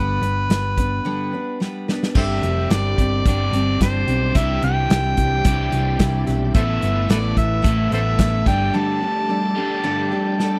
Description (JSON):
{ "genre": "folk rock and heartland rock", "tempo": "109 BPM", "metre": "4/4", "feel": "straight", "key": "unclear", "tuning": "A4 = 439 Hz", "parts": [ { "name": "overdriven harmonica", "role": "melody", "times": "0.0-10.6 s", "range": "A4 to A5", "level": "-26 LUFS", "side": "equal", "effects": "none" }, { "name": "picked steel-string acoustic guitar", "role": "accompaniment", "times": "0.0-10.6 s", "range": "G2 to B4", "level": "-28 LUFS", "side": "equal", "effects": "none" }, { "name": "hollow-body short-scale picked electric bass", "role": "bass", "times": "0.0-8.7 s", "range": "F1 to C2", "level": "-24 LUFS", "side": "equal", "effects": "none" }, { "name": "natural country drum kit", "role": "drums", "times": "0.2-10.5 s", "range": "crash cymbal, hi-hat, kick drum, snare drum", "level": "-22 LUFS", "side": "equal", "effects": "none" }, { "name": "crunchy overdriven guitar", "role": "riff", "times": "2.1-10.6 s", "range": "A2 to A4", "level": "-28 LUFS", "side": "equal", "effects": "none" }, { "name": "bright tonewheel organ", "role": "sustained chords", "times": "2.2-10.6 s", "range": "D4 to E5", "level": "-39 LUFS", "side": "equal", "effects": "none" }, { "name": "bright upright piano", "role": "accompaniment", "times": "6.6-10.6 s", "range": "G4 to A5", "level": "-37 LUFS", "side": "equal", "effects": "none" } ], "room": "small room ambience", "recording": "dry, close 1970s-style studio recording", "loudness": "-20 LUFS", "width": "mono", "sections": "0.0-2.2 A section; 2.2-10.6 B section", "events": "break 1.1-2.2; drum fill 1.6-2.2, 10.4; upright piano fill 9.8-10.6", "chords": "0.0 G; 2.2 Gsus4; 4.4 Cadd9; 6.6 Asus2; 8.5 Gsus2" }